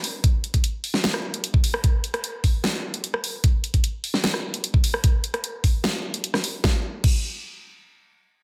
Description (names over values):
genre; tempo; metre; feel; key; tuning
heavy wobble dubstep; 150 BPM; 4/4; half-time; none; none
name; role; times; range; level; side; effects
dubstep drum kit; drums; 0.0-7.1 s; crash cymbal, hi-hat, rim click, snare drum; -28 LUFS; equal; small room ambience
electronic kick drum; drums; 0.2-7.1 s; none; -22 LUFS; equal; small room ambience
room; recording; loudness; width
light reverb; dense, heavily limited modern master; -24 LUFS; mono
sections
0.0-6.6 A section; 6.6-8.2 B section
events
none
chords
none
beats
| 0.24 0.64 1.04 1.44 | 1.84 2.24 2.64 3.04 | 3.44 3.84 4.24 4.64 | 5.04 5.44 5.84 6.24 | 6.64 7.04